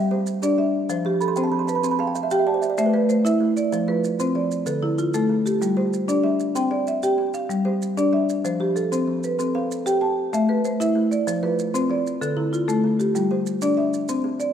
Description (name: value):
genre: southern african traditional, mbira-style interlocking cycle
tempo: 127 BPM (dotted quarters)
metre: 12/8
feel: straight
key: C major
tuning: A4 = 438 Hz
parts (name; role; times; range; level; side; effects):
- kalimba; arpeggios; 0.0-14.5 s; D3 to C6; -28 LUFS; right 7 dB; slapback echo
- marimba with medium hard mallets; arpeggios; 0.0-14.5 s; D3 to A5; -20 LUFS; left 1 dB; none
- maracas; percussion; 0.3-14.5 s; none; -38 LUFS; right 8 dB; none
room: moderate lush hall reverb, RT60 2.5 s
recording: rough home demo mix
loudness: -20 LUFS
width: side -8 dB against mid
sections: 0.0-14.1 A section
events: kalimba fill 1.0-2.8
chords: 0.0 G5; 0.9 F; 1.8 C5; 2.8 Am; 3.7 F5; 4.7 Dm; 5.6 G5; 6.6 C; 7.5 G5; 8.4 F; 9.4 C5; 10.3 Am; 11.3 F5; 12.2 Dm; 13.2 G5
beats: 0.42 | 0.89 1.36 1.83 2.31 | 2.78 3.25 3.72 4.20 | 4.67 5.14 5.61 6.09 | 6.56 7.03 7.50 7.97 | 8.45 8.92 9.39 9.86 | 10.33 10.80 11.27 11.74 | 12.21 12.68 13.15 13.62 | 14.09